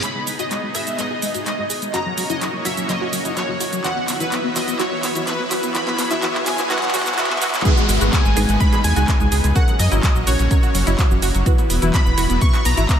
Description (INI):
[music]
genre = progressive house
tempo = 126 BPM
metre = 4/4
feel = straight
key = G# minor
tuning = A4 = 440 Hz
[part]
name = plucky unison lead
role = melody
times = 0.0-13.0 s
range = B4 to C#6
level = -25 LUFS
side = equal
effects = ensemble chorus, vintage 12-bit sampler grit, sidechain pumping, analog delay
[part]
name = supersaw pad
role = sustained chords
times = 0.0-13.0 s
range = F#3 to E5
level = -28 LUFS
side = equal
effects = sidechain pumping
[part]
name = tight sequenced synth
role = arpeggios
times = 0.0-13.0 s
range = F#3 to G#4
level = -26 LUFS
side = left 1 dB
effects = chorus, sidechain pumping, analog delay
[part]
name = deep mellow chord stab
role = stabs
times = 0.0-12.8 s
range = E3 to E5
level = -27 LUFS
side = right 2 dB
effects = chorus, phaser, sidechain pumping, analog delay
[part]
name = pop drum kit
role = drums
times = 0.0-13.0 s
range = cabasa, handclaps, hi-hat, rim click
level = -24 LUFS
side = right 1 dB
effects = sidechain pumping on hats, high-pass filter on hats, high-pass filter on snare, sidechain pumping on perc, high-pass filter on perc
[part]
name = reverse cymbal, riser and downlifter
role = sound effects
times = 0.0-11.5 s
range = none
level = -31 LUFS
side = left 1 dB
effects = none
[part]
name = electronic kick drum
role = drums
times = 7.7-13.0 s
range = none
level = -17 LUFS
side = equal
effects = none
[part]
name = round analog bass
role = bass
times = 7.9-12.9 s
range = E1 to F#2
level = -19 LUFS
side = equal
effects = sidechain pumping
[part]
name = soft round pluck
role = second line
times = 8.1-13.0 s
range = C#5 to C#6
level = -31 LUFS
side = left 1 dB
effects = none
[sound]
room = moderate cathedral reverb, RT60 4.4 s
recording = dreamy mix soaked in reverb, high-pass filter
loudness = -16 LUFS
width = side -9 dB against mid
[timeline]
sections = 0.0-7.7 A section; 7.7-13.0 B section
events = build-up 0.0-7.7; drum fill 0.0-7.7; filter sweep on synth arpeggio sound 0.0-7.7; filter sweep on synth stab 0.0-7.7; drop 7.7-13.0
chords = 0.0 G#m; 1.9 F#; 3.8 Esus2; 5.7 C#m7; 7.7 G#m; 9.6 F#; 11.5 Esus2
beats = | 0.03 0.51 0.99 1.46 | 1.94 2.42 2.89 3.37 | 3.84 4.32 4.80 5.27 | 5.75 6.22 6.70 7.18 | 7.65 8.13 8.61 9.08 | 9.56 10.03 10.51 10.99 | 11.46 11.94 12.41 12.89